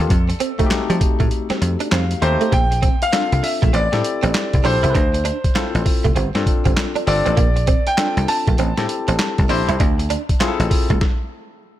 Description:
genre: R&B, new jack swing.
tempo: 99 BPM.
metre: 4/4.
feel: swing 63% on 16ths.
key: D minor.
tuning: A4 = 443 Hz.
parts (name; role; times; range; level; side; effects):
clear concert grand piano; melody; 0.0-11.6 s; A4 to A5; -23 LUFS; equal; none.
barky tine electric piano; accompaniment; 0.0-11.0 s; A3 to A5; -25 LUFS; left 6 dB; none.
dry thumbed slap bass; bass; 0.0-11.0 s; G1 to F3; -19 LUFS; equal; none.
boom bap sampler-style drum kit; drums; 0.1-11.2 s; handclaps, hi-hat, kick drum, snare drum; -19 LUFS; equal; none.
direct-recorded clean electric guitar; riff; 0.3-11.0 s; G3 to F4; -26 LUFS; right 8 dB; ensemble chorus.
room: little or no reverb.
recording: none.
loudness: -16 LUFS.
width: side -13 dB against mid.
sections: 0.0-2.5 A section; 2.5-11.8 B section.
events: kick muted 1.3-2.5; tine electric piano fill 1.6-2.5; stop 11.0-11.8.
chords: 0.1 F7; 2.5 Bbmaj7; 3.7 Am7; 5.0 Dm7; 6.2 G7sus4; 7.4 Bbmaj7; 8.6 Am7; 9.8 Dm7; 11.0 N.C..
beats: | 0.10 0.71 1.31 1.92 | 2.53 3.13 3.74 4.34 | 4.95 5.56 6.16 6.77 | 7.38 7.98 8.59 9.19 | 9.80 10.41 11.01.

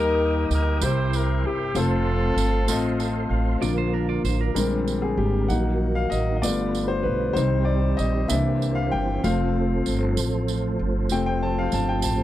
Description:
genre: slow gospel.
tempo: 64 BPM (dotted quarters).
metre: 6/8.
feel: straight.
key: unclear.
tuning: A4 = 443 Hz.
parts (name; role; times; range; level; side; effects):
warm horn section; melody; 0.0-3.3 s; C4 to C5; -25 LUFS; left 2 dB; none.
clear concert grand piano; accompaniment; 0.0-12.2 s; C3 to A5; -25 LUFS; left 4 dB; none.
tonewheel organ; sustained chords; 0.0-12.2 s; D3 to Eb6; -30 LUFS; right 3 dB; slow rotary speaker, overdrive, chorus vibrato.
upright bass; bass; 0.0-12.2 s; F1 to Eb2; -25 LUFS; right 1 dB; none.
tambourine; percussion; 0.5-12.2 s; none; -34 LUFS; right 14 dB; none.
clean electric guitar; second line; 3.6-4.7 s; D4 to D5; -31 LUFS; right 9 dB; none.
room: little or no reverb.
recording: dry, close 1970s-style studio recording.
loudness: -21 LUFS.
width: side -13 dB against mid.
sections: 0.0-3.6 A section; 3.6-12.2 B section.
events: grand piano fill 2.7-3.6; grand piano solo 3.6-12.2.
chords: 0.0 Eb; 0.8 C7; 1.8 F; 3.6 Bb; 4.6 Bb13; 5.5 Ebm/Bb; 6.4 G7; 7.4 Cm; 8.3 C7; 9.2 F.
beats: 0.82 | 1.75 2.69 | 3.62 4.56 | 5.49 6.43 | 7.37 8.30 | 9.24 10.17 | 11.11 12.04.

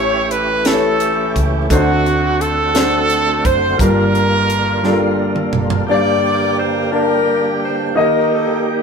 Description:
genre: slow gospel.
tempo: 58 BPM (dotted quarters).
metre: 6/8.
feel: straight.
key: G minor.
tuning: A4 = 441 Hz.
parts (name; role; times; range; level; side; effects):
clear trumpet; melody; 0.0-5.5 s; F#4 to C#5; -18 LUFS; right 3 dB; none.
mellow saxophone section; melody; 0.0-8.8 s; A3 to D5; -20 LUFS; left 4 dB; none.
warm concert grand piano; accompaniment; 0.0-8.8 s; G2 to A5; -18 LUFS; left 1 dB; none.
overdriven tonewheel organ; sustained chords; 0.0-8.8 s; D3 to G4; -22 LUFS; right 3 dB; slow rotary speaker, chorus vibrato.
hollow-body short-scale fingered electric bass; bass; 0.0-5.8 s; F#1 to D2; -22 LUFS; equal; none.
tight funk drum kit; drums; 0.3-5.9 s; hi-hat, kick drum, snare drum, toms; -19 LUFS; equal; none.
room: wet studio reverb, RT60 0.8 s.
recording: band playing live in one room.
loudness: -13 LUFS.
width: side -5 dB against mid.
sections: 0.0-5.9 A section; 5.9-8.8 B section.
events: drum fill 4.8-5.9.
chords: 0.0 A7; 1.7 D7; 3.8 Gm7; 5.9 Gm; 8.0 Eb.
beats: 0.66 | 1.70 2.74 | 3.79 4.83 | 5.88 6.92 | 7.96.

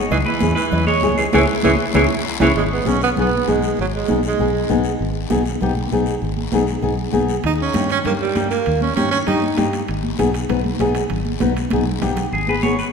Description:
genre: latin, cumbia.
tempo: 196 BPM.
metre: 4/4.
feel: straight.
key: G# harmonic minor.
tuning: A4 = 440 Hz.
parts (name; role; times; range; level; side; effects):
flamenco guitar; accompaniment; 0.0-12.7 s; A#3 to B4; -21 LUFS; left 4 dB; none.
fingered electric bass; bass; 0.0-12.8 s; G#1 to G2; -23 LUFS; equal; none.
clean electric guitar; melody; 0.1-2.5, 12.3-12.8 s; E4 to C#5; -21 LUFS; equal; spring reverb.
breathy tenor saxophone; second line; 0.1-4.8, 7.5-9.6 s; E3 to D#4; -21 LUFS; right 5 dB; none.
congas; percussion; 0.1-12.8 s; none; -24 LUFS; right 2 dB; none.
cowbell and timbales; percussion; 0.1-2.5, 7.4-12.3 s; none; -30 LUFS; right 6 dB; none.
guiro; percussion; 0.1-12.9 s; none; -34 LUFS; left 7 dB; none.
room: wet concert hall reverb, RT60 1.7 s.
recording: minimal, uncompressed stereo recording.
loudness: -16 LUFS.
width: side -6 dB against mid.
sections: 0.0-2.6 A section; 2.6-12.3 B section.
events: band accent 1.3-2.6; drum fill 1.6-2.6, 11.7-12.3; tenor saxophone solo 2.6-12.3.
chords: 0.1 C#m; 2.6 G#m; 7.4 D#7; 9.9 G#m.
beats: | 0.12 0.42 0.73 1.03 | 1.34 1.64 1.95 2.25 | 2.56 2.86 3.17 3.47 | 3.78 4.08 4.39 4.69 | 5.00 5.30 5.61 5.91 | 6.22 6.52 6.83 7.13 | 7.44 7.75 8.05 8.36 | 8.66 8.97 9.27 9.58 | 9.88 10.19 10.50 10.80 | 11.11 11.41 11.72 12.02 | 12.33 12.63.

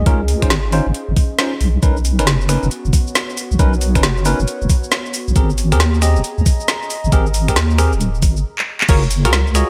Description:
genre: UK garage, two-step garage.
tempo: 136 BPM.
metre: 4/4.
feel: swing 64% on 16ths.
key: unclear.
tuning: A4 = 439 Hz.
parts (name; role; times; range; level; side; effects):
deep soft wobble bass; bass; 0.0-9.6 s; D#1 to D#2; -18 LUFS; equal; chorus, sidechain pumping.
warbly tape-like pad; texture; 0.0-9.7 s; B3 to A#5; -30 LUFS; equal; chorus, built-in reverb, sidechain pumping.
bell-like tine electric piano; stabs; 0.1-9.7 s; B#3 to D#5; -25 LUFS; equal; subtle chorus, low-pass filter, digital delay.
electronic kick drum; drums; 0.1-9.0 s; none; -16 LUFS; equal; overdrive, studio reverb.
garage drum kit; drums; 0.1-9.7 s; crash cymbal, finger snaps, handclaps, hi-hat, shaker, snare drum; -23 LUFS; equal; overdrive, studio reverb, gated reverb.
hollow square pluck; melody; 8.9-9.7 s; F#4 to C#5; -26 LUFS; equal; chorus.
room: light reverb.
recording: bright 1980s-style digital production.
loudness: -16 LUFS.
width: mono.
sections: 0.0-8.9 A section.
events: stop 8.4-8.9; drum fill 8.6-8.9.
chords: 0.0 C#maj9; 1.6 Bmaj9; 5.4 G#maj9; 8.9 F#maj9.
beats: | 0.06 0.51 0.95 1.39 | 1.83 2.27 2.71 3.15 | 3.59 4.04 4.48 4.92 | 5.36 5.80 6.24 6.68 | 7.12 7.56 8.01 8.45 | 8.89 9.33.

